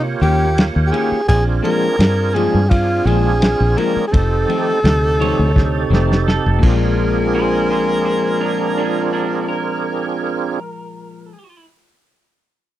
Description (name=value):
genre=straight-eighth soul blues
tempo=84 BPM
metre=4/4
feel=swing 54% on 16ths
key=Bb mixolydian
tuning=A4 = 437 Hz
part: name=tonewheel organ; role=accompaniment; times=0.0-10.6 s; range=C3 to Db5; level=-22 LUFS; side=right 6 dB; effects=overdrive, chorus vibrato, slow rotary speaker
part: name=fingered electric bass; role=bass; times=0.0-11.3 s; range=F1 to C3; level=-17 LUFS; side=equal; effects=none
part: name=breathy tenor saxophone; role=melody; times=0.2-10.6 s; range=F4 to Bb4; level=-20 LUFS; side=equal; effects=none
part: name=electric guitar through a small old amp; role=stabs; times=0.2-11.4 s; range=F2 to G4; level=-23 LUFS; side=left 6 dB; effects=spring reverb
part: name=warm soul drum kit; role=drums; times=0.2-6.8 s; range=crash cymbal, kick drum, ride cymbal, snare drum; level=-16 LUFS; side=equal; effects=none
part: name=electric guitar through a small old amp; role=second line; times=5.2-11.7 s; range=D4 to Db5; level=-25 LUFS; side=right 2 dB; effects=none
room=light reverb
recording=dry, close 1970s-style studio recording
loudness=-14 LUFS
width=side -13 dB against mid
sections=0.0-7.0 A section; 7.0-9.8 B section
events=drum fill 5.6-7.0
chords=0.0 Eb7; 1.3 Bb7; 4.1 F7; 6.6 Bb7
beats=0.57 | 1.28 2.00 2.71 3.42 | 4.13 4.84 5.56 6.27 | 6.98 7.70 8.41 9.12